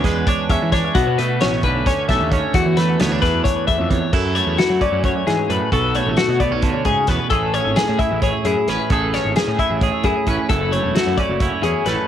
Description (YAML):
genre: math rock and midwest emo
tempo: 264 BPM (eighths)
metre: 7/8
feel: straight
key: unclear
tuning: A4 = 441 Hz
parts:
  - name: twelve-string electric guitar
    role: accompaniment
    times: 0.0-12.1 s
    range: E2 to G#4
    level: -22 LUFS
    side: right 9 dB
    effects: cassette tape
  - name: twelve-string electric guitar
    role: arpeggios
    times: 0.0-12.1 s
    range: F#4 to E5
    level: -20 LUFS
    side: left 7 dB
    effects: wide subtle chorus, cassette tape, analog delay
  - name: fuzz picked electric bass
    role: bass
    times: 0.0-11.9 s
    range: E1 to F#3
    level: -23 LUFS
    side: equal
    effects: overdrive
  - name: loose indie drum kit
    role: drums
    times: 0.0-12.0 s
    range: crash cymbal, hi-hat, kick drum, snare drum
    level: -22 LUFS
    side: equal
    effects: cassette tape
room: moderate booth ambience, RT60 0.2 s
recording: home recording on cassette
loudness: -16 LUFS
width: side -10 dB against mid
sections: 0.0-4.1 A section; 4.1-12.1 B section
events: none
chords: 0.0 E13; 1.0 Bm9; 2.5 E9sus4; 4.1 F#m9; 5.7 Bm9; 7.3 Amaj9; 10.5 F#m9